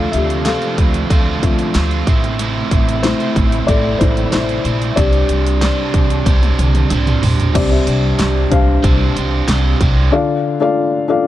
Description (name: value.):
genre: piano-driven pop.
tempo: 93 BPM.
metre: 4/4.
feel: straight.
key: unclear.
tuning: A4 = 438 Hz.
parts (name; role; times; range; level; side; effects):
felt-muted upright piano; accompaniment; 0.0-11.3 s; C3 to F5; -18 LUFS; left 4 dB; none.
warm studio string section; sustained chords; 0.0-10.1 s; C3 to E4; -25 LUFS; left 1 dB; none.
overdriven electric guitar; riff; 0.0-10.1 s; A2 to C5; -21 LUFS; right 6 dB; none.
upright bass; bass; 0.0-10.1 s; A1 to D2; -17 LUFS; equal; none.
pop drum kit; drums; 0.1-10.0 s; crash cymbal, hi-hat, kick drum, snare drum, toms; -17 LUFS; equal; none.
room: small room ambience.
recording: dark, warm production.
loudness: -12 LUFS.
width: side -13 dB against mid.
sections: 0.0-7.5 A section; 7.5-10.1 B section; 10.1-11.3 C section.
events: felt piano solo 0.0-7.5; drum fill 6.3-7.5.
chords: 0.0 Dm7; 2.1 Am; 5.0 Csus2; 10.1 Dm.